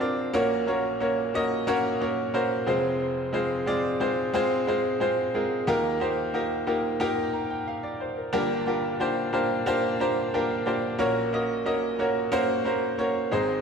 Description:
pop; 90 BPM; 4/4; straight; A4 = 440 Hz
clear upright piano; solo; 0.0-13.6 s; F1 to Bb5; -24 LUFS; equal; ping-pong delay
wet scoring stage reverb, RT60 1.6 s; -24 LUFS; side -6 dB against mid
0.0-13.6 A section
upright piano fill 9.7-11.0
0.3 Gb/Bb; 2.7 Fm; 5.7 Ebadd9; 8.3 Gm7; 11.0 Gb/Bb

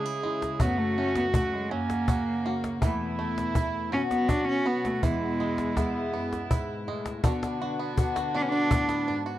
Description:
acoustic folk duo or small band; 54 BPM (dotted quarters); 6/8; straight; B dorian; A4 = 440 Hz
bright clarinet; second line; 0.0-9.4 s; B3 to G#4; -33 LUFS; right 5 dB
fingerpicked steel-string acoustic guitar; accompaniment; 0.0-9.4 s; E2 to G#4; -32 LUFS; left 3 dB
warm chamber string section; sustained chords; 0.0-9.4 s; B2 to F#4; -38 LUFS; left 3 dB
bluegrass banjo; arpeggios; 0.0-9.4 s; D3 to F#4; -36 LUFS; right 7 dB
cajon; percussion; 0.4-9.1 s; -27 LUFS; left 1 dB
warm cello; melody; 0.6-9.1 s; G#3 to D4; -29 LUFS; right 1 dB
light reverb; dry, close 1970s-style studio recording; -25 LUFS; side -13 dB against mid
0.0-7.2 A section; 7.2-9.4 B section
cello solo 0.0-7.2
0.0 C#m; 0.6 F#m; 1.7 F#; 2.8 Esus4; 3.9 Bsus2; 5.0 E; 7.2 Bm

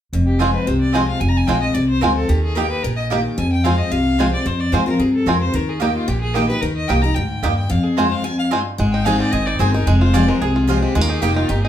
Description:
bluegrass; 222 BPM; 4/4; straight; F dorian; A4 = 442 Hz
picked steel-string acoustic guitar; accompaniment; 0.1-11.7 s; F2 to Ab4; -19 LUFS; left 2 dB
upright bass; bass; 0.1-11.7 s; F1 to Ab2; -20 LUFS; right 1 dB
rich fiddle; melody; 0.3-11.7 s; F4 to Bb5; -25 LUFS; left 2 dB
bluegrass banjo; melody; 0.4-11.7 s; Ab3 to Ab4; -24 LUFS; right 1 dB; plate reverb
mandolin; stabs; 0.4-11.3 s; Ab3 to Ab5; -23 LUFS; right 4 dB
wet studio reverb, RT60 0.6 s; heard from further back in the room; -15 LUFS; side -10 dB against mid
0.1-8.8 A section; 8.8-11.7 B section
break 8.2-8.8
0.1 Fm; 2.3 Eb; 3.4 Fm; 5.5 Eb; 7.7 Fm; 8.8 Ab; 9.9 Fmadd9; 11.0 Eb

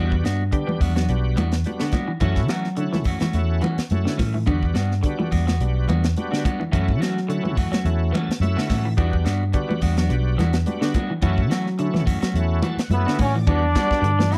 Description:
afrobeat; 107 BPM; 4/4; swing 54% on 16ths; E dorian; A4 = 440 Hz
bright tonewheel organ; accompaniment; 0.0-14.1 s; G3 to A5; -32 LUFS; equal; overdrive, chorus vibrato, slow rotary speaker
electric guitar at the edge of break-up; arpeggios; 0.0-14.4 s; D3 to F#3; -30 LUFS; equal; phaser
electric guitar at the edge of break-up; stabs; 0.0-14.4 s; E3 to F#4; -32 LUFS; equal; spring reverb
fingered electric bass; bass; 0.0-14.4 s; B1 to F#3; -24 LUFS; equal
tight funk drum kit; drums; 0.1-14.4 s; hi-hat, kick drum, snare drum; -26 LUFS; equal
congas; percussion; 0.4-14.3 s; -31 LUFS; equal
brilliant trombone; melody; 12.9-14.4 s; B3 to E4; -25 LUFS; equal
warm trumpet; second line; 12.9-14.4 s; B4 to E5; -34 LUFS; equal
little or no reverb; dry, close 1970s-style studio recording; -22 LUFS; mono
0.0-13.5 A section
tonewheel organ fill 7.9-9.0, 12.3-13.5
0.0 Em9; 2.2 F#m7; 4.5 Em9; 6.7 F#m7; 9.0 Em9; 11.2 F#m7; 13.5 Em9

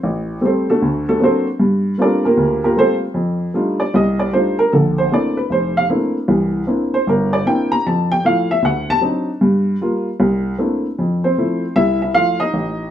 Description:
solo jazz; 154 BPM; 4/4; swing 65% on 8ths; F major; A4 = 441 Hz
dark upright piano; solo; 0.0-12.9 s; F1 to Bb5; -14 LUFS; equal
wet studio reverb, RT60 0.7 s; band playing live in one room; -14 LUFS; side -10 dB against mid
0.0-11.0 A section; 11.0-12.9 B section
upright piano solo 0.0-11.0
0.0 Am7; 0.8 D7b13; 1.6 Gm11; 3.2 F13; 4.7 Bbmaj9#11; 6.3 C9; 7.8 Fmaj7; 8.6 D7b9; 9.4 Gm7; 10.2 C13; 11.0 Fmaj7

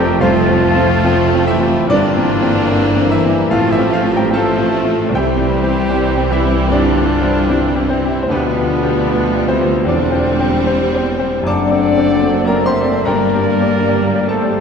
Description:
classical, romantic movement for piano and orchestra; 74 BPM; 4/4; rubato; A4 = 440 Hz
clear concert grand piano; melody; 0.0-14.6 s; C2 to D6; -16 LUFS; left 1 dB
rich studio violin section; melody; 0.0-14.6 s; B3 to D4; -28 LUFS; left 5 dB
rich symphonic violin section; second line; 0.0-14.6 s; G3 to C4; -26 LUFS; left 1 dB
silver concert flute; second line; 0.0-14.6 s; D4 to F#5; -24 LUFS; left 1 dB
bright symphonic viola section; accompaniment; 0.0-14.6 s; E3 to A3; -25 LUFS; right 3 dB
warm French horn section; sustained chords; 0.0-14.6 s; B2 to D4; -22 LUFS; left 4 dB
mellow trumpet; stabs; 0.0-14.6 s; B3 to D5; -22 LUFS; right 1 dB
clear symphonic double bass section; bass; 0.0-14.6 s; E1 to D2; -24 LUFS; right 2 dB
mellow tuba; bass; 0.0-14.6 s; E1 to D2; -23 LUFS; right 3 dB
rich symphonic cello section; bass; 0.0-14.6 s; C2 to A2; -24 LUFS; right 3 dB
warm trombone section; sustained chords; 0.2-14.6 s; E3 to D4; -26 LUFS; right 3 dB
wet scoring stage reverb, RT60 2.0 s; heard from further back in the room; -12 LUFS; side -6 dB against mid
0.0-14.6 A section
0.0 F; 1.9 C7/G; 3.5 F/A; 5.1 C; 8.3 G7/D; 9.9 C/E; 11.4 D7/F#; 13.1 Gm

